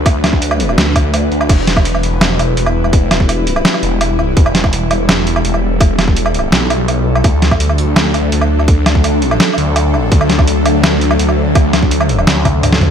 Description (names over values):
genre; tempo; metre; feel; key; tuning
half-time drum and bass; 167 BPM; 4/4; half-time; unclear; A4 = 441 Hz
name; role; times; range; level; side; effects
bowed-like drone; sustained chords; 0.0-12.9 s; F#3 to B4; -17 LUFS; left 1 dB; built-in reverb, sidechain pumping
phased detuned saw bass; bass; 0.0-12.9 s; E1 to D2; -15 LUFS; equal; phaser
boom bap sampler-style drum kit; drums; 0.1-12.9 s; crash cymbal, hi-hat, snare drum, toms, woodblock; -15 LUFS; right 1 dB; studio reverb
electronic kick drum; drums; 0.1-12.5 s; none; -11 LUFS; equal; studio reverb
room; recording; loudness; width
light reverb, digital ambience; none; -10 LUFS; side -8 dB against mid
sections
0.0-12.9 A section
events
drum fill 12.5-12.9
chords
0.0 D; 1.5 Em; 7.2 D